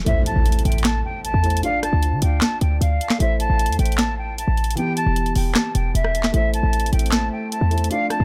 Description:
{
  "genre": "hip hop, trap",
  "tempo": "153 BPM",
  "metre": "4/4",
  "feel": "half-time",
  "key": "A minor",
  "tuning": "A4 = 441 Hz",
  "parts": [
    { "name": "dark concert grand piano", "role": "accompaniment", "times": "0.0-8.2 s", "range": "E3 to D5", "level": "-31 LUFS", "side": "equal", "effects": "low-pass filter, dub echo" },
    { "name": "short 808-style bass", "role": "bass", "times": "0.0-8.2 s", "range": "E1 to D3", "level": "-22 LUFS", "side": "equal", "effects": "none" },
    { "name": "swell and impact", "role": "sound effects", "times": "0.1-1.6 s", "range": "none", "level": "-28 LUFS", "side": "equal", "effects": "none" },
    { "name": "silver concert flute", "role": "melody", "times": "0.1-8.2 s", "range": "E5 to A5", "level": "-27 LUFS", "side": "equal", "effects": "low-pass filter, dub echo" },
    { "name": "trap drum kit", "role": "drums", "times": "0.1-8.2 s", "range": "handclaps, hi-hat, rim click, snare drum", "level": "-26 LUFS", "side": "equal", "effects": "none" },
    { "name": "warbly tape-like pad", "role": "sustained chords", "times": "6.3-8.2 s", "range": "F3 to D4", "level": "-33 LUFS", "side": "equal", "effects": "chorus, built-in reverb" }
  ],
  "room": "little or no reverb",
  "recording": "echo-heavy mix",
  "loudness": "-20 LUFS",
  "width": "mono",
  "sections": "0.1-8.2 A section",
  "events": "impact 0.1-1.6",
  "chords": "0.1 Am; 1.6 Dm; 3.2 Am; 4.8 Em; 6.3 Am",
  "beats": "| 0.06 0.46 0.85 1.24 | 1.63 2.02 2.42 2.81 | 3.20 3.59 3.99 4.38 | 4.77 5.16 5.55 5.95 | 6.34 6.73 7.12 7.51 | 7.91"
}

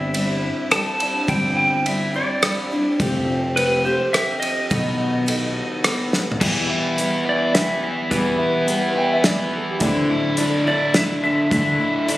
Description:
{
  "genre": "folk rock and heartland rock",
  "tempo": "106 BPM",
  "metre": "3/4",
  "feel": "straight",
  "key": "unclear",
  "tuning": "A4 = 440 Hz",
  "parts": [
    { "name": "clean lap steel guitar", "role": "melody", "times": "0.0-12.2 s", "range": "B4 to A5", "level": "-22 LUFS", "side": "equal", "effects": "digital delay" },
    { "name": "picked twelve-string acoustic guitar", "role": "accompaniment", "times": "0.0-12.2 s", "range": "E2 to G4", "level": "-23 LUFS", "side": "left 1 dB", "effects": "none" },
    { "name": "upright bass", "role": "bass", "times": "0.0-11.7 s", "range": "F1 to E2", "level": "-26 LUFS", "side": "equal", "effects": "none" },
    { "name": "damped 70s drum kit", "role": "drums", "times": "0.1-12.2 s", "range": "crash cymbal, hi-hat, kick drum, ride cymbal, rim click, snare drum, toms", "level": "-23 LUFS", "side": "equal", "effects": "none" },
    { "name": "overdriven electric guitar", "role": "riff", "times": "6.4-12.2 s", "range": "D3 to E4", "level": "-22 LUFS", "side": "equal", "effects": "none" },
    { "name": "clear upright piano", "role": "second line", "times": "9.0-10.5 s", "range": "C4 to G5", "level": "-25 LUFS", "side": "right 1 dB", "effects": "none" },
    { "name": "reed electric piano", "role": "accompaniment", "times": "9.8-12.2 s", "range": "E4 to E5", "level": "-29 LUFS", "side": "right 1 dB", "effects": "overdrive" }
  ],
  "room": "light reverb",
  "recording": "recorded on a phone in the room, studio reverb",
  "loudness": "-18 LUFS",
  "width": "side -16 dB against mid",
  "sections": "0.0-6.4 A section; 6.4-12.2 B section",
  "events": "drum fill 6.1",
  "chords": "0.0 Cadd9/G; 3.0 Fadd9; 4.7 B7; 6.4 Em; 9.8 Dsus2",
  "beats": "0.15 0.72 | 1.29 1.86 2.43 | 3.00 3.57 4.14 | 4.71 5.28 5.85 | 6.42 6.99 7.55 | 8.12 8.69 9.26 | 9.82 10.39 10.96 | 11.52 12.09"
}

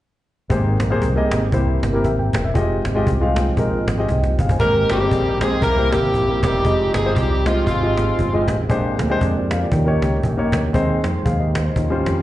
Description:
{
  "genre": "uptempo gospel",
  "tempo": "117 BPM",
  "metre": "4/4",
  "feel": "swing 58% on 8ths",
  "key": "Ab major",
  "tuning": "A4 = 440 Hz",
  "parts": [
    { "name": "warm concert grand piano", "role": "accompaniment", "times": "0.5-12.2 s", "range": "Ab2 to Ab5", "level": "-22 LUFS", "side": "left 2 dB", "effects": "slapback echo" },
    { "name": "tonewheel organ", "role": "sustained chords", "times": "0.5-12.2 s", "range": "D3 to C5", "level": "-26 LUFS", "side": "right 3 dB", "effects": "slow rotary speaker" },
    { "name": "fingered electric bass", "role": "bass", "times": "0.5-12.2 s", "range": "E1 to F2", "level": "-21 LUFS", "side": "equal", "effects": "none" },
    { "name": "cajon", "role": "drums", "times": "0.5-12.2 s", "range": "none", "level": "-23 LUFS", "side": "equal", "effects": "none" },
    { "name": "overdriven slide guitar", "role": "melody", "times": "4.6-8.4 s", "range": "F4 to Bb4", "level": "-22 LUFS", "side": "right 2 dB", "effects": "slapback echo" },
    { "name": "warm horn section", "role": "melody", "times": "4.6-8.7 s", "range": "F3 to Bb4", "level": "-23 LUFS", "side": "left 2 dB", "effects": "slapback echo" }
  ],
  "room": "light reverb, studio reverb",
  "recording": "live gig heard through the venue's PA, club reverb, nothing above 10.4 kHz",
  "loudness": "-16 LUFS",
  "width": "side -14 dB against mid",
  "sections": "0.5-4.6 A section; 4.6-12.2 B section",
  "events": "drum fill 4.1-4.6",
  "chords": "0.5 Abmaj9; 1.5 C7; 2.5 Fm9; 4.6 Abmaj9; 5.6 C7; 6.6 Fm9; 8.7 Bb13; 9.7 Eb7; 10.7 Ab/Eb",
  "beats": "| 0.50 1.01 1.52 2.04 | 2.55 3.06 3.57 4.08 | 4.60 5.11 5.62 6.13 | 6.65 7.16 7.67 8.18 | 8.69 9.21 9.72 10.23 | 10.74 11.25 11.76"
}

